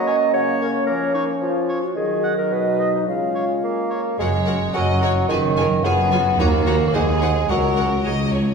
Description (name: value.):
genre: cinematic, playful, whimsical film cue.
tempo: 109 BPM.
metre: 2/4.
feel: straight.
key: F# major.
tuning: A4 = 439 Hz.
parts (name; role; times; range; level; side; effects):
concert flute; second line; 0.0-3.9 s; A#4 to G#5; -26 LUFS; right 3 dB; none.
warm clarinet; second line; 0.0-3.9 s; D#4 to D#5; -23 LUFS; right 1 dB; none.
mellow bassoon; accompaniment; 0.0-8.0 s; B2 to B3; -22 LUFS; right 1 dB; none.
dark French horn section; sustained chords; 0.0-3.9 s; E#3 to D#4; -25 LUFS; left 2 dB; none.
clear oboe; second line; 0.1-4.0 s; C#5 to F#5; -32 LUFS; right 1 dB; none.
clear chamber violin section; melody; 4.2-8.3 s; F#4 to D#5; -28 LUFS; left 3 dB; none.
clear chamber violin section; second line; 4.2-8.5 s; B#4 to A#5; -29 LUFS; left 1 dB; none.
rich chamber viola section; accompaniment; 4.2-8.4 s; D#4 to C#5; -29 LUFS; equal; none.
clear chamber double bass section; bass; 4.2-8.5 s; F#1 to D#2; -24 LUFS; right 2 dB; none.
warm chamber cello section; bass; 4.2-8.5 s; C#2 to F#2; -22 LUFS; right 1 dB; none.
room: wet scoring stage reverb, RT60 1.9 s.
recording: heard from further back in the room.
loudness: -17 LUFS.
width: side -5 dB against mid.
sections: 0.0-4.2 A section; 4.2-8.5 B section.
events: none.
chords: 0.0 F#; 0.9 A#m/E#; 2.0 D#m; 2.5 B; 3.1 C#; 4.2 F#; 5.3 C#/F#; 6.4 D#m; 6.9 G#5/D#; 7.5 F#/C#.